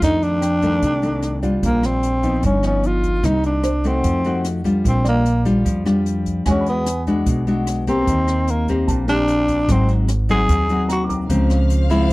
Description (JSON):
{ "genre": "bossa nova", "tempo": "149 BPM", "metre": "4/4", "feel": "straight", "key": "Bb major", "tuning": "A4 = 443 Hz", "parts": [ { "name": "growling tenor saxophone", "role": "melody", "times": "0.0-12.1 s", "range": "Bb3 to Ab4", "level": "-20 LUFS", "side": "equal", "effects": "none" }, { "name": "nylon-string guitar", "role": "accompaniment", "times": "0.0-12.1 s", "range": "F2 to G4", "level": "-21 LUFS", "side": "left 2 dB", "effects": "none" }, { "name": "upright bass", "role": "bass", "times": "0.0-12.1 s", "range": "G1 to F2", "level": "-21 LUFS", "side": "equal", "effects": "none" }, { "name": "open jazz drum kit", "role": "drums", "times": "0.0-12.1 s", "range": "hi-hat, kick drum, rim click", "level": "-26 LUFS", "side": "equal", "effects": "none" }, { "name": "warm baby grand piano", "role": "accompaniment", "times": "0.4-11.5 s", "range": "C5 to D6", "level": "-32 LUFS", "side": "right 3 dB", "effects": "none" }, { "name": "warm symphonic string section", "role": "sustained chords", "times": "11.3-12.1 s", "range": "C5 to F5", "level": "-28 LUFS", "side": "left 2 dB", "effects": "none" } ], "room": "small room ambience", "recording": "dry, close 1970s-style studio recording", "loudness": "-16 LUFS", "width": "side -20 dB against mid", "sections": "0.0-4.8 A section; 4.8-12.1 B section", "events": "tenor saxophone solo 4.8-12.1", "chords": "0.0 F13; 1.6 Bb6; 2.4 Gaug7; 3.2 Cm7; 4.0 F7b9; 4.8 Bb6; 6.5 E9; 8.1 Eb6; 9.7 Ab7; 11.3 Dbmaj7" }